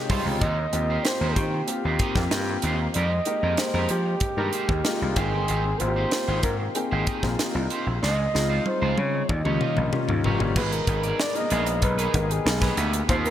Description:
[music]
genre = polished 1980s jazz-funk pop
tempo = 95 BPM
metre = 4/4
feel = straight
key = Eb mixolydian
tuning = A4 = 440 Hz
[part]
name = breathy flugelhorn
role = melody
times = 0.0-13.3 s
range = G4 to Eb5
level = -29 LUFS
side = right 1 dB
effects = none
[part]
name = clear grand piano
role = accompaniment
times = 0.0-13.3 s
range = C3 to G5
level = -30 LUFS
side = left 3 dB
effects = analog chorus
[part]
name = electric guitar at the edge of break-up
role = riff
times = 0.1-13.3 s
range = Ab3 to Eb5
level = -31 LUFS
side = right 4 dB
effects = lush chorus
[part]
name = gritty slap bass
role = bass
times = 0.1-13.3 s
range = F1 to F3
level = -26 LUFS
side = equal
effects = overdrive
[part]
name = crisp fusion drum kit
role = drums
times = 0.1-13.3 s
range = crash cymbal, hi-hat, kick drum, snare drum, toms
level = -27 LUFS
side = equal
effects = none
[sound]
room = moderate lush hall reverb, RT60 2.9 s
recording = bright 1980s-style digital production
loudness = -22 LUFS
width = side -11 dB against mid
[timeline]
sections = 0.0-10.6 A section; 10.6-13.3 B section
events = drum fill 8.0-10.6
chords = 0.4 Eb6; 2.9 Fm11; 5.2 Abmaj7; 8.0 Dbmaj9; 9.3 Eb7; 10.6 Abm

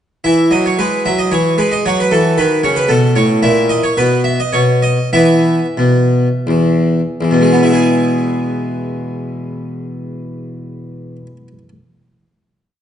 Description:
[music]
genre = classical, baroque-style suite movement for harpsichord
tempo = 80-115 BPM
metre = 3/4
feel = rubato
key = E major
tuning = A4 = 440 Hz
[part]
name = harpsichord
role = solo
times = 0.2-11.7 s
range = E2 to E5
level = -12 LUFS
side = equal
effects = none
[sound]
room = wet recital hall reverb, RT60 1.5 s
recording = dark, warm production, nothing above 10.5 kHz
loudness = -11 LUFS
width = side -9 dB against mid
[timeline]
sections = 0.2-7.2 A section; 7.2-11.6 final chord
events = slowing down 2.6-7.2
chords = 0.2 E; 1.8 F#m; 3.4 A#dim; 4.0 N.C.; 5.1 E5; 7.2 E

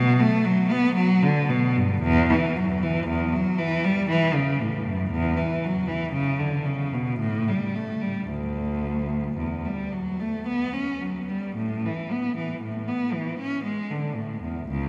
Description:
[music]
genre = classical, baroque-style suite movement for unaccompanied cello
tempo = 52-59 BPM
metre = 3/4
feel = rubato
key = D major, A major from 11.6 s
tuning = A4 = 441 Hz
[part]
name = clear cello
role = solo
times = 0.0-14.9 s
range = C#2 to C#4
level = -25 LUFS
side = equal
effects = none
[sound]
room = wet cathedral reverb, RT60 5.8 s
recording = heard from further back in the room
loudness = -25 LUFS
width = mono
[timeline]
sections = 0.0-11.6 A section; 11.6-14.9 A section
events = none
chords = none

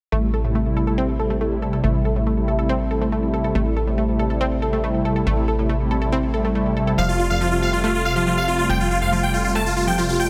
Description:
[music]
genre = trance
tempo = 140 BPM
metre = 4/4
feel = straight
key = A minor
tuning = A4 = 440 Hz
[part]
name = lush unison pad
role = sustained chords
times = 0.1-10.3 s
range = C3 to F4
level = -25 LUFS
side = equal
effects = chorus, phaser
[part]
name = analog pluck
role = arpeggios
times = 0.1-10.2 s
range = F2 to A4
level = -27 LUFS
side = equal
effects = chorus, tape echo
[part]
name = tight sequencer bass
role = bass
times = 0.1-10.3 s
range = F1 to A1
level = -26 LUFS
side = equal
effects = tube saturation
[part]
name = supersaw chords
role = melody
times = 7.0-10.3 s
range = F4 to A5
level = -23 LUFS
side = equal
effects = phaser
[sound]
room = light reverb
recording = none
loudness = -21 LUFS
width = mono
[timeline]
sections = 0.1-10.3 A section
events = none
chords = 0.1 Am7; 7.0 Fadd9

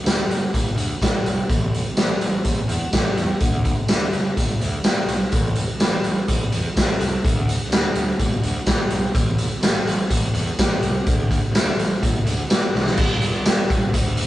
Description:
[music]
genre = indie rock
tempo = 125 BPM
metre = 4/4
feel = straight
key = unclear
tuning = A4 = 443 Hz
[part]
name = fuzz picked electric bass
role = bass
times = 0.0-14.3 s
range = F#1 to E2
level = -27 LUFS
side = equal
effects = overdrive
[part]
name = raw garage drum kit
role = drums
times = 0.1-14.3 s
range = crash cymbal, hi-hat, kick drum, snare drum, tambourine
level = -18 LUFS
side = equal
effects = none
[sound]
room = light reverb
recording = rough rehearsal-room recording, nothing above 10.3 kHz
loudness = -18 LUFS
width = side -15 dB against mid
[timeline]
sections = 0.0-13.0 A section; 13.0-14.3 B section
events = drum fill 12.7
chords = none

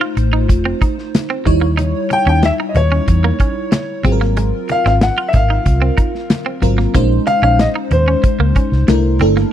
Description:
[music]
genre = polished 1980s jazz-funk pop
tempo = 93 BPM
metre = 4/4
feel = straight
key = unclear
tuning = A4 = 440 Hz
[part]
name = FM electric piano with soft pad layer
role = accompaniment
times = 0.0-9.5 s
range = Gb3 to Db5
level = -19 LUFS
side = equal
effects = wide subtle chorus
[part]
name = clean electric guitar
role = riff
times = 0.0-9.5 s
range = Ab3 to F4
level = -22 LUFS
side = right 6 dB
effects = analog chorus
[part]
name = vintage muted fingered electric bass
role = bass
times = 0.2-9.4 s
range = F1 to Fb2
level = -15 LUFS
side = equal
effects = none
[part]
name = modern studio drum kit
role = drums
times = 0.2-9.4 s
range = hi-hat, kick drum, snare drum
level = -16 LUFS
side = equal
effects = none
[part]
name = congas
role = percussion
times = 0.8-9.3 s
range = none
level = -26 LUFS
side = left 3 dB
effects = none
[part]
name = warm baby grand piano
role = melody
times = 2.1-9.2 s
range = C5 to G5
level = -18 LUFS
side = left 2 dB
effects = tape echo
[sound]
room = small room reverb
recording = dry, close 1970s-style studio recording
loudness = -12 LUFS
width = side -10 dB against mid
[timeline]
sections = 0.0-9.5 A section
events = none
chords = 0.0 F7; 1.5 Eb7b9; 4.0 Ab13; 7.0 Bbm11; 8.9 C13

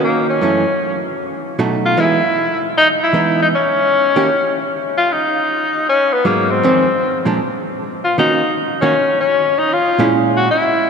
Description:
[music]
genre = jazz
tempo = 155 BPM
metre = 4/4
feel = swing 63% on 8ths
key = Eb minor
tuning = A4 = 440 Hz
[part]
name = clear tenor saxophone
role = melody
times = 0.0-10.9 s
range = Bb3 to Gb4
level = -15 LUFS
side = left 2 dB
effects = none
[part]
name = archtop guitar, miked and amplified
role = accompaniment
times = 0.0-10.5 s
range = F2 to G4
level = -18 LUFS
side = right 2 dB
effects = none
[sound]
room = wet cathedral reverb, RT60 5.5 s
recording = in a vast, echoing space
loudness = -13 LUFS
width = side -6 dB against mid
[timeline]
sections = 0.0-10.9 A section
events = none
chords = 0.4 Gbm7; 1.2 B7; 2.0 Emaj7; 3.5 Eb7; 5.1 Abm7; 6.6 Fm7; 7.4 N.C.; 8.2 Ebm7; 9.7 Bbm7b5

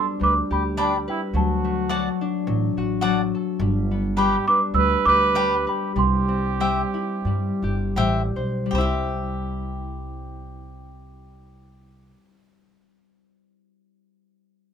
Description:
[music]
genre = mexican folk, mariachi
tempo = 79-107 BPM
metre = 4/4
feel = straight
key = C major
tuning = A4 = 439 Hz
[part]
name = celesta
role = melody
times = 0.0-7.9 s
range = G5 to E6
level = -23 LUFS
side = right 2 dB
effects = none
[part]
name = mellow trumpet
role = second line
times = 0.0-7.9 s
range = D4 to B4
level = -27 LUFS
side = right 6 dB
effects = none
[part]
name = concert harp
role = arpeggios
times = 0.0-12.2 s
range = F#3 to C5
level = -26 LUFS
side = left 4 dB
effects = none
[part]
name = upright bass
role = bass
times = 0.2-12.1 s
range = G1 to G2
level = -26 LUFS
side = right 1 dB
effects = none
[part]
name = cavaquinho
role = accompaniment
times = 0.8-12.3 s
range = D4 to A5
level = -26 LUFS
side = left 3 dB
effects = none
[sound]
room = moderate small room reverb, RT60 0.5 s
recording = minimal, uncompressed stereo recording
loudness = -20 LUFS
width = side -8 dB against mid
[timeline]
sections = 0.0-8.7 A section; 8.7-11.7 B section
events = slowing down 3.6-8.7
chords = 0.0 G; 1.3 D; 3.6 G; 6.0 C

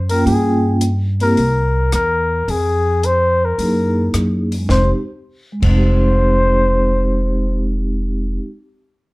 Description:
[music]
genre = jazz, small-group swing and bop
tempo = 108 BPM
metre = 4/4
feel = swing 69% on 8ths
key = F minor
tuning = A4 = 439 Hz
[part]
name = upright bass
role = bass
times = 0.0-8.4 s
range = F1 to G2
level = -17 LUFS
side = equal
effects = none
[part]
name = breathy flugelhorn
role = melody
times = 0.1-7.7 s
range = Ab4 to C5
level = -18 LUFS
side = left 1 dB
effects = none
[part]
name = vibraphone with soft mallets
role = accompaniment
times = 0.1-8.5 s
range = Ab3 to G5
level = -19 LUFS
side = equal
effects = none
[part]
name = compact cocktail drum kit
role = drums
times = 0.1-5.7 s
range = crash cymbal, hi-hat, kick drum, rim click, snare drum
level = -26 LUFS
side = equal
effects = none
[sound]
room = light reverb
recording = none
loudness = -14 LUFS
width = side -22 dB against mid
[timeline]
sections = 0.0-4.7 A section; 4.7-6.9 B section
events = none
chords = 0.3 Gm7b5; 1.4 C7; 2.5 Fm; 3.6 Gb13; 4.7 Fm9

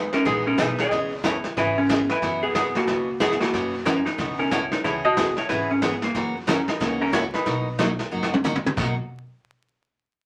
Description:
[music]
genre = country, western swing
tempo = 183 BPM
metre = 4/4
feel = swing 61% on 8ths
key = B major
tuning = A4 = 440 Hz
[part]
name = vintage hollow-body jazz guitar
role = melody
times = 0.0-8.5 s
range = A#3 to D#5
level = -25 LUFS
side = equal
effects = none
[part]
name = picked steel-string acoustic guitar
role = accompaniment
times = 0.0-8.9 s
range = B2 to G#4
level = -31 LUFS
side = equal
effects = none
[part]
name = upright bass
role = bass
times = 0.0-9.0 s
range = F#1 to F#2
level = -38 LUFS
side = equal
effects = none
[part]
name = vintage brush drum kit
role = drums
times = 0.1-8.9 s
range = brushed snare drum, crash cymbal, hi-hat, kick drum, snare drum, toms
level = -29 LUFS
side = equal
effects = none
[sound]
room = wet small room reverb, RT60 0.5 s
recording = vinyl crackle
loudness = -23 LUFS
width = mono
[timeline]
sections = 0.0-8.8 A section; 8.8-10.1 B section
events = drum fill 8.1-8.8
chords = 0.0 Emaj7; 0.9 C#m7; 2.2 F#7sus4; 4.8 C#m7; 6.2 F#7; 7.5 Bmaj7

